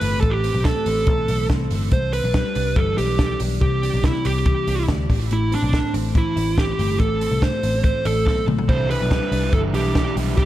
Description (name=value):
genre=jangly indie pop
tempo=142 BPM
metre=4/4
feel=straight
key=C major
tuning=A4 = 437 Hz
part: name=smooth overdriven lead guitar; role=melody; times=0.0-10.5 s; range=D4 to C5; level=-23 LUFS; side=right 2 dB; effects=dub echo
part: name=twelve-string electric guitar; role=arpeggios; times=0.0-10.5 s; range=A2 to E4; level=-26 LUFS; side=left 3 dB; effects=spring reverb
part: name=vintage muted picked electric bass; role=bass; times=0.0-10.5 s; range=G1 to D2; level=-23 LUFS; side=equal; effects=none
part: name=compact cocktail drum kit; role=drums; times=0.0-10.5 s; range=hi-hat, kick drum, snare drum, toms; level=-22 LUFS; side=equal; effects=none
part: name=crunchy overdriven guitar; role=accompaniment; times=8.7-10.5 s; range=C3 to E4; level=-27 LUFS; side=right 5 dB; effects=dub echo
room=light reverb, small room reverb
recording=echo-heavy mix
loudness=-18 LUFS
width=side -14 dB against mid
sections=0.0-10.5 A section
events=drum fill 8.3-8.7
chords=0.0 Am; 1.9 Cadd9; 5.1 Am; 8.7 Cadd9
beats=| 0.23 0.65 1.07 1.50 | 1.92 2.35 2.77 3.19 | 3.62 4.04 4.46 4.88 | 5.31 5.73 6.15 6.57 | 7.00 7.42 7.84 8.26 | 8.69 9.11 9.53 9.95 | 10.38